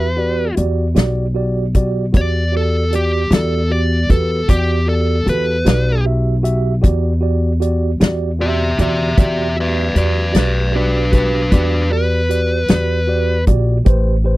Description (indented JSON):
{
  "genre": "slow blues",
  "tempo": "51 BPM (dotted quarters)",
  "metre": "12/8",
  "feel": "straight",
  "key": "E minor",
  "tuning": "A4 = 440 Hz",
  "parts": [
    { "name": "dark smooth lead guitar", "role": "melody", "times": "0.0-13.4 s", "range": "D4 to E5", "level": "-19 LUFS", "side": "left 1 dB", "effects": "overdrive" },
    { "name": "mellow tine electric piano", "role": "accompaniment", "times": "0.0-14.4 s", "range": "F#4 to E5", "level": "-22 LUFS", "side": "right 3 dB", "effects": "medium stereo tremolo" },
    { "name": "upright bass", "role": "bass", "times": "0.0-14.4 s", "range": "A1 to E2", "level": "-17 LUFS", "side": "equal", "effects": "none" },
    { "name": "natural country drum kit", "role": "drums", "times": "0.6-14.0 s", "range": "hi-hat, kick drum, snare drum", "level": "-13 LUFS", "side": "equal", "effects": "none" }
  ],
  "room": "little or no reverb",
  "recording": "dry, close 1970s-style studio recording",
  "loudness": "-14 LUFS",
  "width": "side -18 dB against mid",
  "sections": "0.0-14.4 A section",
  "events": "none",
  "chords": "0.0 Em7; 13.9 Am7"
}